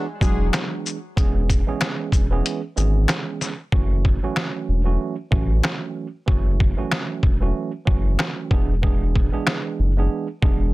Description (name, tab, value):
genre	hip hop, boom-bap hip-hop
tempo	94 BPM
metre	4/4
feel	swing 57% on 16ths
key	F# minor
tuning	A4 = 439 Hz
part	nylon-string guitar	melody	0.0-0.7 s	F#3 to G#4	-30 LUFS	equal	high-pass filter, low-pass filter, tape echo
part	mellow tine electric piano	accompaniment	0.0-10.7 s	E3 to G#4	-28 LUFS	right 6 dB	overdrive, high-pass filter, low-pass filter
part	mellow horn section	stabs	0.0-0.5 s	E3 to G#4	-33 LUFS	left 6 dB	high-pass filter, low-pass filter, tape echo
part	saturated sub bass	bass	0.2-10.7 s	E1 to A1	-21 LUFS	equal	none
part	trip hop sampler-style drum kit	drums	0.2-10.6 s	hi-hat, kick drum, rim click, shaker, snare drum	-20 LUFS	equal	vintage 12-bit sampler grit
part	finger snaps	percussion	0.5-9.6 s	none	-31 LUFS	left 8 dB	none
room	little or no reverb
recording	dense, heavily limited modern master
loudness	-19 LUFS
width	side -19 dB against mid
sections	0.0-3.7 A section; 3.7-10.7 B section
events	break 2.4-3.7; hi-hats muted 3.7-10.7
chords	0.0 E7; 1.2 C#m7/E; 3.7 F#m7; 8.5 E7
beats	0.53 | 1.17 1.81 2.45 3.09 | 3.73 4.36 5.00 5.64 | 6.28 6.92 7.55 8.19 | 8.83 9.47 10.11